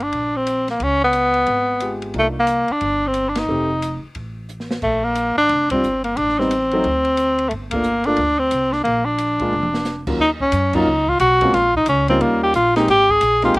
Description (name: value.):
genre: jazz, small-group swing and bop.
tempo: 179 BPM.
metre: 4/4.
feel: swing 63% on 8ths.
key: unclear.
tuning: A4 = 442 Hz.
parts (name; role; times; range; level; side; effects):
breathy tenor saxophone; melody; 0.0-13.6 s; A3 to Ab4; -16 LUFS; equal; none.
upright bass; bass; 0.0-13.6 s; F1 to Gb2; -27 LUFS; equal; none.
open jazz drum kit; drums; 0.0-13.6 s; crash cymbal, hi-hat, kick drum, ride cymbal, snare drum, toms; -31 LUFS; equal; none.
warm grand piano; accompaniment; 1.8-3.7, 5.7-13.5 s; Eb2 to G4; -22 LUFS; equal; none.
room: little or no reverb.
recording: recorded outdoors, with no room sound.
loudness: -16 LUFS.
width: side -24 dB against mid.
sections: 0.0-10.2 A section; 10.2-13.6 B section.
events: band accent 3.3, 5.7, 7.7, 10.7; drum fill 4.5-4.8, 9.5-9.9.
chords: 0.0 Gm (rootless); 0.8 C#7#11; 2.1 Cm11; 3.5 F9; 4.8 Bb6; 6.2 Am7b5; 6.8 Csus2/D; 7.5 Gm9; 8.9 Bb; 10.2 Ebm7; 11.5 Bbm; 12.2 Eb7; 12.9 Abmaj9.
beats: 0.13 0.46 | 0.80 1.14 1.47 1.81 | 2.14 2.48 2.82 3.15 | 3.49 3.82 4.16 4.50 | 4.83 5.17 5.50 5.84 | 6.17 6.51 6.84 7.18 | 7.51 7.85 8.19 8.52 | 8.86 9.19 9.53 9.86 | 10.20 10.53 10.87 11.20 | 11.54 11.87 12.21 12.54 | 12.88 13.21 13.55.